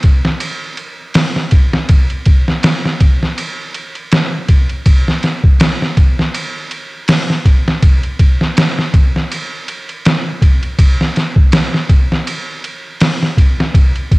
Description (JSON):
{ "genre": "trip hop", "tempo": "81 BPM", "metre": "4/4", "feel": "swing 56% on 16ths", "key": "none", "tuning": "none", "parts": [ { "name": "trip hop sampler-style drum kit", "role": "drums", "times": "0.0-14.2 s", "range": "hi-hat, kick drum, ride cymbal, snare drum", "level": "-11 LUFS", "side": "equal", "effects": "studio reverb" } ], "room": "digital ambience", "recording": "dry, gritty hardware recording, cassette tape", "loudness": "-11 LUFS", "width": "side -22 dB against mid", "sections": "0.0-14.2 A section", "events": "none", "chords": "none" }